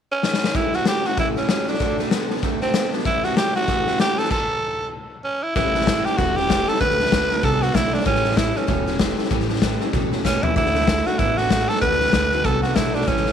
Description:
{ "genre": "rockabilly", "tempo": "192 BPM", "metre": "4/4", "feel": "swing 59% on 8ths", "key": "A mixolydian", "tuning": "A4 = 439 Hz", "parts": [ { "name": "raspy tenor saxophone", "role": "melody", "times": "0.1-13.3 s", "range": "C4 to B4", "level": "-22 LUFS", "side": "right 1 dB", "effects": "none" }, { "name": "raw garage drum kit", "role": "drums", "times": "0.2-13.3 s", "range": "crash cymbal, hi-hat, kick drum, snare drum, toms", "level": "-22 LUFS", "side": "left 3 dB", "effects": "none" }, { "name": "picked steel-string acoustic guitar", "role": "accompaniment", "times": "0.5-13.3 s", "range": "A2 to A4", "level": "-28 LUFS", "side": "left 12 dB", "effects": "none" }, { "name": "electric guitar through a small old amp", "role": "riff", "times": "0.6-13.3 s", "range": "A2 to B3", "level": "-26 LUFS", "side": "right 16 dB", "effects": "none" }, { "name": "upright bass", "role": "bass", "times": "5.6-13.3 s", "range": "E1 to D2", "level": "-27 LUFS", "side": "right 1 dB", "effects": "none" } ], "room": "moderate spring reverb, RT60 1.8 s, small room reverb", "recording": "1960s-style stereo with parts hard left and right", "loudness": "-18 LUFS", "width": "side -8 dB against mid", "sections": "0.5-5.6 A section; 5.6-13.3 B section", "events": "drum fill 0.2-0.5, 10.3-10.6; stop 4.3-5.6", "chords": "0.0 N.C.; 0.5 A7; 1.8 D7; 3.1 A7; 6.8 D7; 8.1 A7; 10.6 D7", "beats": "0.24 | 0.55 0.86 1.18 1.49 | 1.80 2.12 2.43 2.74 | 3.06 3.37 3.68 4.00 | 4.31 4.62 4.93 5.25 | 5.56 5.87 6.18 6.50 | 6.81 7.12 7.43 7.75 | 8.06 8.37 8.69 9.00 | 9.31 9.62 9.94 10.25 | 10.56 10.88 11.19 11.51 | 11.82 12.14 12.45 12.77 | 13.08" }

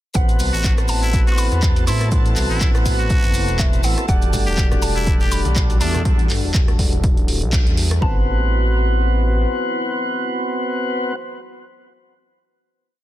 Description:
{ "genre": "deep house", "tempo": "122 BPM", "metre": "4/4", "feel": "swing 56% on 16ths", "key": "A dorian", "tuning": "A4 = 441 Hz", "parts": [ { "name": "tonewheel organ", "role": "stabs", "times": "0.1-11.2 s", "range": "G3 to F#4", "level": "-24 LUFS", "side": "equal", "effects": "slow rotary speaker, vintage 12-bit sampler grit, sidechain pumping, tape echo" }, { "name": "maracas", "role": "percussion", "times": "0.1-6.0 s", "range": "none", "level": "-33 LUFS", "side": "left 3 dB", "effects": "none" }, { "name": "mallet-like synth pluck", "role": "melody", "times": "0.2-11.1 s", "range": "E5 to C6", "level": "-31 LUFS", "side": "equal", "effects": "chorus, vintage 12-bit sampler grit, digital delay" }, { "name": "dark analog pad", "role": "sustained chords", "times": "0.9-11.1 s", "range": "G3 to B4", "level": "-30 LUFS", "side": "left 1 dB", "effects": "chorus, sidechain pumping" }, { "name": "smooth synth bass", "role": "bass", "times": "0.2-9.5 s", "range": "D1 to A2", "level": "-20 LUFS", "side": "equal", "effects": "sidechain pumping" }, { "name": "dusty soul sampler-style drum kit", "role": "drums", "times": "0.2-5.9 s", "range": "hi-hat, shaker, snare drum", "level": "-38 LUFS", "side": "right 3 dB", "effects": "none" }, { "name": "electronic kick drum", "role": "drums", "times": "0.2-8.1 s", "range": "none", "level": "-18 LUFS", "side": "equal", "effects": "none" }, { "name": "punchy analog drum machine", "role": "drums", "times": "0.2-8.0 s", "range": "handclaps, hi-hat, rim click", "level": "-27 LUFS", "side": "right 1 dB", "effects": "none" }, { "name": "string machine, violins", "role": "texture", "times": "0.2-6.1 s", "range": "A5", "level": "-36 LUFS", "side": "right 1 dB", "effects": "ensemble chorus, sidechain pumping" }, { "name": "trumpet with straight mute", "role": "melody", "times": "0.5-6.0 s", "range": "D4 to G4", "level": "-28 LUFS", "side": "equal", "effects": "tape echo" }, { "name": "bongos and congas", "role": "percussion", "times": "4.3-6.0 s", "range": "none", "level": "-28 LUFS", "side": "left 2 dB", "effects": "none" } ], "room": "little or no reverb", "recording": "dense, heavily limited modern master", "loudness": "-16 LUFS", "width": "side -14 dB against mid", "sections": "0.2-8.0 drop; 8.0-12.0 final chord", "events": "drop 0.2-8.0; band accent 7.5", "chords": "0.2 Am69; 4.1 Em11; 8.0 Am69", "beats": "| 0.15 0.64 1.14 1.63 | 2.12 2.61 3.10 3.59 | 4.09 4.58 5.07 5.56 | 6.05 6.54 7.04 7.53 | 8.02 8.51 9.00 9.49 | 9.99 10.48 10.97" }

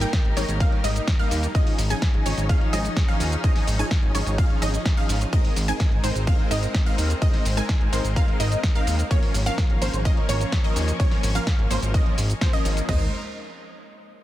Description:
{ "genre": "EDM, festival progressive house", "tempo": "127 BPM", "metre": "4/4", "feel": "straight", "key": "Ab major", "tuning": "A4 = 440 Hz", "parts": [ { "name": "rich chamber string section", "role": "sustained chords", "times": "0.0-13.1 s", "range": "F3 to C5", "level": "-35 LUFS", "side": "left 1 dB", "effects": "sidechain pumping" }, { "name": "wide unison pluck", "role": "arpeggios", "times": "0.0-13.1 s", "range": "C5 to Ab5", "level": "-32 LUFS", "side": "right 1 dB", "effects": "phaser, sidechain pumping, dub echo" }, { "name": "supersaw stab", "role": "riff", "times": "0.0-13.1 s", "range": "F3 to Ab5", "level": "-29 LUFS", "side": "equal", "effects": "ensemble chorus, sidechain pumping, dub echo" }, { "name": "fat analog bass", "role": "bass", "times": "0.0-13.1 s", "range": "Ab1 to Eb2", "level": "-24 LUFS", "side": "equal", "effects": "sidechain pumping" }, { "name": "house drum kit", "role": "drums", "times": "0.0-12.9 s", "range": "cabasa, hi-hat, snare drum", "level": "-30 LUFS", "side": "equal", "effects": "small room ambience" }, { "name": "big-room dance drum kit", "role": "drums", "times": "0.1-13.0 s", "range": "crash cymbal, kick drum, toms", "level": "-21 LUFS", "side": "equal", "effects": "small room ambience" } ], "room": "little or no reverb", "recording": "dense, heavily limited modern master", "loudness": "-20 LUFS", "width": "side -14 dB against mid", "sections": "0.0-12.9 A section; 12.9-14.2 B section", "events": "drop 0.0-12.9", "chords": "0.0 Eb/Ab; 1.5 Dbadd9/Ab; 5.3 Abadd9; 9.1 Bbm/Ab; 12.9 Abadd9", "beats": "0.13 0.60 1.08 | 1.55 2.02 2.49 2.97 | 3.44 3.91 4.38 4.86 | 5.33 5.80 6.27 6.75 | 7.22 7.69 8.16 8.63 | 9.11 9.58 10.05 10.53 | 11.00 11.47 11.94 12.41 | 12.89" }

